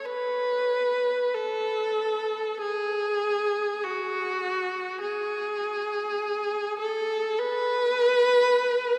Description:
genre	classical, free, expressive piece for unaccompanied viola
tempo	free time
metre	none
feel	none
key	unclear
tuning	A4 = 441 Hz
part	rich viola	solo	0.0-9.0 s	F#4 to B4	-26 LUFS	equal	none
room	wet cathedral reverb, RT60 5.5 s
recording	in a vast, echoing space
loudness	-27 LUFS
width	mono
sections	0.0-9.0 A section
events	none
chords	none

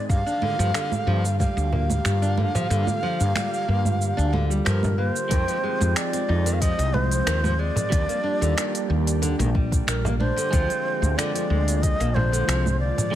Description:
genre	organic downtempo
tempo	92 BPM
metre	4/4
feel	straight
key	F dorian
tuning	A4 = 440 Hz
part	breathy bright low ney	melody	0.0-13.2 s	Bb4 to F5	-27 LUFS	equal	vintage 12-bit sampler grit, tape echo
part	airy breathy pad	sustained chords	0.0-13.2 s	D3 to G4	-32 LUFS	left 1 dB	chorus, sidechain pumping
part	woody fretless electric bass	bass	0.1-12.9 s	Bb1 to G2	-23 LUFS	equal	sidechain pumping
part	electronic kick drum	drums	0.1-12.0 s	none	-23 LUFS	equal	none
part	organic electronic drum kit	drums	0.1-13.1 s	congas, finger snaps, hi-hat, shaker	-28 LUFS	right 2 dB	none
part	nylon-string guitar	arpeggios	0.3-13.2 s	D3 to Eb4	-31 LUFS	left 1 dB	tape echo
part	frame drum	percussion	1.7-13.1 s	none	-29 LUFS	right 1 dB	none
part	clean electric guitar	accompaniment	5.3-13.2 s	D3 to G4	-32 LUFS	right 6 dB	sidechain pumping, tape echo
room	light reverb, digital ambience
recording	none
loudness	-20 LUFS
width	side -12 dB against mid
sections	0.0-5.3 A section; 5.3-13.2 B section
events	kick drops out 2.7-5.3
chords	0.1 Gm7; 5.3 Fm7; 7.9 Ebmaj7; 10.5 Bb7

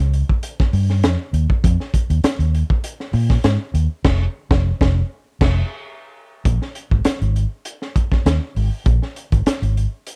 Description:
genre	funk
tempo	100 BPM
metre	4/4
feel	straight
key	unclear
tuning	A4 = 439 Hz
part	vintage muted fingered electric bass	bass	0.0-9.8 s	F1 to Bb2	-20 LUFS	equal	none
part	crunchy breakbeat drum kit	drums	0.0-10.2 s	crash cymbal, hi-hat, kick drum, snare drum	-21 LUFS	equal	none
room	little or no reverb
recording	dry, close 1970s-style studio recording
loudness	-19 LUFS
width	mono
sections	0.0-6.5 A section; 6.5-10.2 B section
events	band accent 4.0-6.5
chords	none

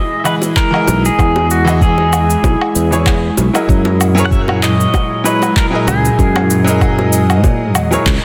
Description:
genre	sunset chillout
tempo	96 BPM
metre	4/4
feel	swing 55% on 16ths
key	unclear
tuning	A4 = 440 Hz
part	pedal steel guitar	melody	0.0-8.0 s	F#4 to F#5	-20 LUFS	equal	tape echo
part	bright baby grand piano	accompaniment	0.0-8.1 s	E3 to D#5	-21 LUFS	equal	digital delay
part	ethereal airy pad	sustained chords	0.0-8.2 s	A#2 to D#5	-22 LUFS	equal	ensemble chorus, built-in reverb
part	electronic woodblock, cabasa and handclaps	drums	0.3-8.2 s	none	-22 LUFS	equal	none
part	bongos	percussion	0.4-8.0 s	none	-26 LUFS	equal	none
part	electronic kick drum	drums	0.6-8.2 s	none	-16 LUFS	equal	none
part	sustaining fretless electric bass	bass	0.9-8.2 s	B1 to A#2	-17 LUFS	equal	tube saturation, subtle chorus
room	moderate recital hall reverb, RT60 1.7 s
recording	dense, heavily limited modern master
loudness	-13 LUFS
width	mono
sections	0.0-8.2 A section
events	band accent 8.1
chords	0.0 Emaj7; 3.7 F#13

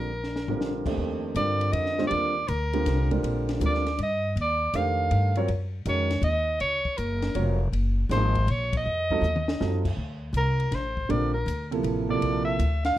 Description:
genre	modal jazz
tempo	160 BPM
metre	3/4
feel	swing 66% on 8ths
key	Eb lydian, Bb lydian from 10.0 s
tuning	A4 = 444 Hz
part	warm soprano saxophone	melody	0.0-13.0 s	Bb4 to F5	-28 LUFS	right 1 dB	none
part	warm concert grand piano	accompaniment	0.0-12.6 s	F2 to Db5	-28 LUFS	right 2 dB	none
part	upright bass	bass	0.0-13.0 s	F1 to G2	-27 LUFS	equal	none
part	compact cocktail drum kit	drums	0.2-12.9 s	crash cymbal, hi-hat, kick drum, ride cymbal, snare drum, toms	-34 LUFS	left 2 dB	none
room	light reverb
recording	none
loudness	-24 LUFS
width	side -14 dB against mid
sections	1.0-10.0 A section; 10.0-13.0 B section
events	drum fill 0.2-0.6, 9.2-9.6; band accent 8.7; soprano saxophone solo 10.0-13.0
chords	0.0 Bb; 1.0 Ebmaj9; 5.5 Gbmaj9; 8.8 F7b9; 10.0 Bbmaj9

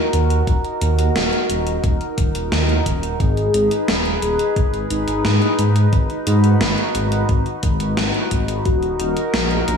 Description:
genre	synthwave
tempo	88 BPM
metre	4/4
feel	straight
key	unclear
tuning	A4 = 440 Hz
part	warm velvety synth lead	melody	0.0-9.8 s	Eb4 to Ab4	-24 LUFS	left 3 dB	chorus, slapback echo, tape echo
part	chorused pulse-width pad	sustained chords	0.0-9.8 s	Eb4 to Cb5	-23 LUFS	equal	lush chorus, sidechain pumping
part	dark detuned saw bass	bass	0.1-9.8 s	Eb1 to Ab2	-19 LUFS	equal	none
part	gated 80s digital drum machine	drums	0.1-9.8 s	hi-hat, snare drum	-23 LUFS	equal	gated reverb, gated reverb snare, slapback echo
part	electronic kick drum	drums	0.5-8.8 s	none	-19 LUFS	equal	none
room	moderate lush hall reverb, RT60 1.7 s, digital ambience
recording	big arena sound, small room ambience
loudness	-16 LUFS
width	side -6 dB against mid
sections	0.0-9.8 A section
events	none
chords	0.0 Ebm; 3.2 Abm; 8.7 Ebm

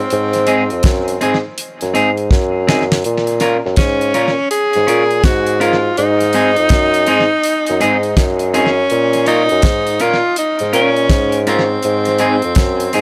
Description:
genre	roots reggae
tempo	82 BPM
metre	4/4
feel	swing 63% on 16ths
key	unclear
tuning	A4 = 440 Hz
part	warm tenor saxophone	melody	0.0-13.0 s	C4 to Ab4	-18 LUFS	equal	dub echo
part	dark bassoon	bass	0.0-13.0 s	F2 to Bb2	-19 LUFS	equal	none
part	damped 70s drum kit	drums	0.1-13.0 s	hi-hat, kick drum, snare drum	-19 LUFS	equal	tape echo
part	clean electric guitar	accompaniment	0.5-13.0 s	C4 to Bb4	-22 LUFS	equal	warbly pitch drift, dub echo
room	studio reverb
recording	none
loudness	-14 LUFS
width	mono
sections	0.0-13.0 A section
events	drum fill 2.3-3.0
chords	0.1 Ab; 3.0 Bbm; 6.0 Ab; 8.9 Bbm; 11.8 Ab

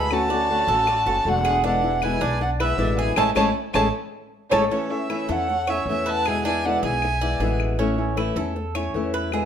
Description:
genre	latin, Cuban son and guajira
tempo	156 BPM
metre	4/4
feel	straight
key	A major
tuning	A4 = 440 Hz
part	warm violin	melody	0.0-7.6 s	C#5 to B5	-24 LUFS	right 1 dB	none
part	rich studio violin section	second line	0.0-7.6 s	A3 to F#5	-31 LUFS	equal	none
part	flamenco guitar	accompaniment	0.0-9.5 s	B2 to F#4	-26 LUFS	left 4 dB	none
part	Cuban tres	arpeggios	0.0-9.5 s	C#4 to D5	-27 LUFS	right 3 dB	slapback echo
part	upright bass	bass	0.0-9.5 s	E1 to E2	-28 LUFS	equal	none
part	claves	percussion	0.1-9.5 s	none	-33 LUFS	left 7 dB	none
room	moderate large studio reverb, RT60 1.2 s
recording	none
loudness	-20 LUFS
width	side -8 dB against mid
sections	0.0-4.7 A section; 4.7-9.5 B section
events	band accent 3.2-4.7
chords	0.1 Dmaj7; 1.6 E7; 3.2 Amaj7; 4.7 A; 6.3 E7; 7.8 A

